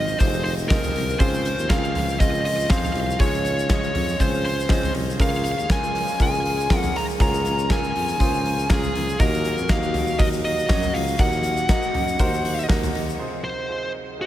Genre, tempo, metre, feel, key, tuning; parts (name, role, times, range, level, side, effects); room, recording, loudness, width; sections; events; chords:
piano-driven pop; 120 BPM; 4/4; swing 56% on 16ths; Db major; A4 = 440 Hz
fuzz lead guitar; melody; 0.0-14.3 s; Ab4 to Bb5; -25 LUFS; equal; distortion, tape echo
warm French horn section; second line; 0.0-12.9 s; Db3 to Ab4; -33 LUFS; left 4 dB; tape echo
clear concert grand piano; accompaniment; 0.0-14.3 s; Ab2 to Gb5; -30 LUFS; right 2 dB
mellow tuba; bass; 0.0-13.2 s; F1 to Gb2; -27 LUFS; equal
tube shaker; percussion; 0.1-13.2 s; -41 LUFS; left 7 dB
huge arena drum kit; drums; 0.2-13.1 s; hi-hat, kick drum, snare drum, toms; -23 LUFS; equal
light reverb, small room ambience; -19 LUFS; side -13 dB against mid
0.0-13.2 A section; 13.2-14.3 B section
0.0 Fm7; 1.2 Dbmaj7; 5.2 Bbm7/Db; 9.2 Ebm; 13.2 Fm7